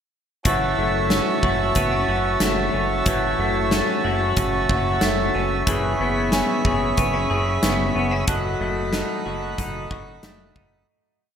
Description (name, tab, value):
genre	dream pop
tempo	92 BPM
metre	4/4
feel	straight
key	F# dorian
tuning	A4 = 439 Hz
part	pedal harmonium	sustained chords	0.5-10.9 s	F#4 to B5	-23 LUFS	right 2 dB	none
part	electric guitar through a small old amp	arpeggios	0.5-11.4 s	E3 to G#4	-25 LUFS	left 3 dB	wide subtle chorus, digital delay
part	fat analog bass	bass	0.5-10.8 s	F#1	-27 LUFS	equal	none
part	huge arena drum kit	drums	0.5-10.7 s	hi-hat, kick drum, snare drum	-25 LUFS	equal	gated reverb
part	large celesta	texture	6.3-9.4 s	G#5 to A5	-34 LUFS	left 3 dB	none
room	wet plate reverb, RT60 2.3 s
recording	bright 1980s-style digital production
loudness	-19 LUFS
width	side -8 dB against mid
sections	0.5-10.9 A section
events	fade-out 8.3-10.9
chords	0.5 F#m7; 5.7 C#m7/F#; 8.3 B7/F#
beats	| 0.45 1.11 1.76 2.41 | 3.06 3.71 4.37 5.02 | 5.67 6.32 6.98 7.63 | 8.28 8.93 9.58 10.24